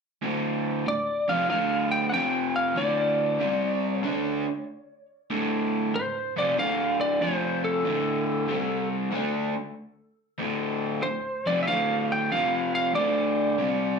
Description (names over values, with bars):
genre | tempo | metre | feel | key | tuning
rock | 94 BPM | 4/4 | swing 68% on 8ths | D minor | A4 = 440 Hz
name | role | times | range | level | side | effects
crunchy overdriven guitar | riff | 0.2-14.0 s | D2 to D4 | -26 LUFS | equal | slapback echo
lightly driven lead guitar | melody | 0.9-14.0 s | A4 to G5 | -26 LUFS | equal | slapback echo, analog delay
room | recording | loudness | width
light reverb | live gig heard through the venue's PA, club reverb | -24 LUFS | side -5 dB against mid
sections
0.2-14.0 A section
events
none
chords
0.2 Dm; 2.1 F5; 2.8 D5; 3.4 C5; 4.0 Dm; 7.2 F5; 7.8 D5; 8.5 C5; 9.1 Dm; 12.3 F5; 12.9 D5